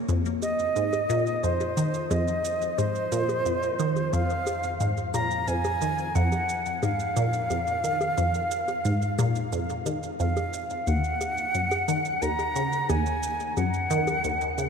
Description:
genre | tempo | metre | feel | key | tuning
ambient, sequencer-driven space music | 89 BPM | 4/4 | straight | Eb dorian | A4 = 441 Hz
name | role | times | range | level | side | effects
resonant blip pluck | riff | 0.0-14.7 s | Eb2 to Eb3 | -27 LUFS | equal | phaser, shimmer reverb, ping-pong delay
analog drone | bass | 1.8-14.7 s | Eb2 to F2 | -42 LUFS | left 1 dB | none
shaker and bongos | percussion | 0.1-14.7 s | none | -37 LUFS | right 1 dB | ping-pong delay
breathy bright concert flute | melody | 0.4-14.7 s | C5 to Bb5 | -27 LUFS | right 1 dB | shimmer reverb, ping-pong delay
room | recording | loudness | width
wet cathedral reverb, RT60 5.5 s | in a vast, echoing space | -24 LUFS | side -6 dB against mid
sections
0.0-14.7 A section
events
none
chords
0.1 N.C.; 10.9 Ebm

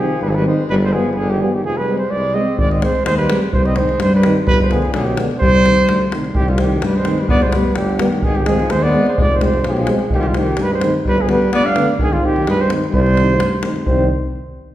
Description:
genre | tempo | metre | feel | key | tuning
balkan folk, Balkan brass band | 128 BPM | 2/4 | swing 54% on 16ths | C harmonic minor | A4 = 436 Hz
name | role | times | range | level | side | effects
dark trumpet | melody | 0.0-14.1 s | F4 to F5 | -19 LUFS | right 3 dB | none
warm alto saxophone | second line | 0.0-14.1 s | D3 to D4 | -21 LUFS | left 2 dB | none
dark euphonium | accompaniment | 0.0-14.1 s | D3 to Ab3 | -24 LUFS | right 2 dB | none
warm euphonium | accompaniment | 0.0-14.1 s | B3 to C4 | -25 LUFS | left 3 dB | none
mellow tuba | bass | 0.2-14.1 s | F1 to G2 | -20 LUFS | equal | none
davul | percussion | 2.6-14.1 s | none | -20 LUFS | equal | none
room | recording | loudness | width
wet recital hall reverb, RT60 1.5 s | recorded in a church or concert hall | -13 LUFS | side -13 dB against mid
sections
0.0-6.4 A section; 6.4-13.9 B section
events
none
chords
0.0 Ab; 0.7 G; 1.6 Fm; 2.6 Ab; 3.5 Cm; 4.5 G; 5.4 Cm; 7.3 G; 8.2 Ab; 9.2 Fm; 10.1 Cm; 11.1 G; 12.0 Ab; 12.9 Cm

